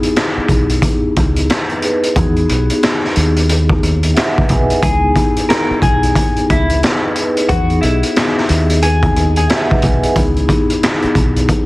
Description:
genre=hip hop, boom-bap hip-hop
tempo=90 BPM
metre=4/4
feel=swing 62% on 16ths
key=C# minor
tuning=A4 = 440 Hz
part: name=vibraphone with soft mallets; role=accompaniment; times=0.0-11.7 s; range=B3 to G#5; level=-17 LUFS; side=left 1 dB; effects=cassette tape, high-pass filter, low-pass filter
part: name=raw garage drum kit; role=drums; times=0.0-11.7 s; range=handclaps, hi-hat, kick drum, snare drum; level=-15 LUFS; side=equal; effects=vintage 12-bit sampler grit
part: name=deep dub fingered electric bass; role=bass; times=0.4-11.5 s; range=B1 to E2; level=-16 LUFS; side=equal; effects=none
part: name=clean electric guitar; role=melody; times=4.8-9.7 s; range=E4 to A#4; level=-19 LUFS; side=left 2 dB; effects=lush chorus, high-pass filter, low-pass filter, tape echo
room=little or no reverb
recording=heavily compressed radio sound, multiband compression, vinyl crackle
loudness=-11 LUFS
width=side -20 dB against mid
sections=0.0-11.7 A section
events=none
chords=0.0 C#m9; 2.2 Emaj9; 4.8 C#m9; 7.5 Emaj9; 10.2 C#m9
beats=0.16 0.83 1.49 | 2.16 2.83 3.49 4.16 | 4.83 5.49 6.16 6.83 | 7.49 8.16 8.83 9.49 | 10.16 10.83 11.49

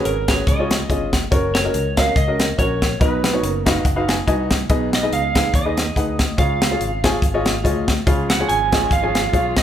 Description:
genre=uptempo gospel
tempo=142 BPM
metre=4/4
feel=swing 55% on 8ths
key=unclear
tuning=A4 = 440 Hz
part: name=electric slide guitar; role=melody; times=0.0-9.6 s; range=A#4 to G#5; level=-23 LUFS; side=right 3 dB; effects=none
part: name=warm upright piano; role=accompaniment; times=0.0-9.6 s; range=B2 to G#5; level=-22 LUFS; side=left 1 dB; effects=none
part: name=fingered electric bass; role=bass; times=0.1-9.6 s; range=F#1 to D#2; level=-25 LUFS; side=equal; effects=none
part: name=tight funk drum kit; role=drums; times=0.1-9.6 s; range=hi-hat, kick drum, snare drum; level=-19 LUFS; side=equal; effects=none
part: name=warm studio string section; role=sustained chords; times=8.1-9.6 s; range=E#3 to E#4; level=-31 LUFS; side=left 1 dB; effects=none
room=moderate large studio reverb, RT60 1.2 s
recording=band playing live in one room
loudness=-16 LUFS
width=side -10 dB against mid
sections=0.0-9.6 A section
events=upright piano fill 3.4-4.7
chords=0.5 C#; 1.3 F#; 3.0 B; 4.7 G#m/B; 6.4 C#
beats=0.05 0.47 0.90 | 1.32 1.74 2.17 2.59 | 3.01 3.43 3.85 4.28 | 4.70 5.12 5.54 5.96 | 6.38 6.81 7.23 7.65 | 8.07 8.49 8.91 9.34

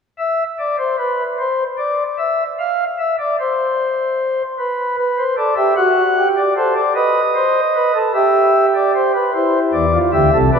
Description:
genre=classical, baroque-style 3-part fugue for pipe organ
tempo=50 BPM (dotted quarters)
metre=6/8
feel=straight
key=A minor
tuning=A4 = 439 Hz
part: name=pipe organ, flutes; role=solo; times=0.2-10.6 s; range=B1 to F#5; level=-14 LUFS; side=equal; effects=none
room=wet church reverb, RT60 3.0 s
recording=minimal, uncompressed stereo recording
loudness=-14 LUFS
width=side -6 dB against mid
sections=0.0-10.6 A section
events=none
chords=0.0 N.C.; 4.6 Em/B; 5.8 F#dim; 7.0 B7; 8.1 Em/G; 9.3 Am/E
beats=0.99 | 2.19 3.39 | 4.58 5.77 | 6.96 8.15 | 9.34 10.53

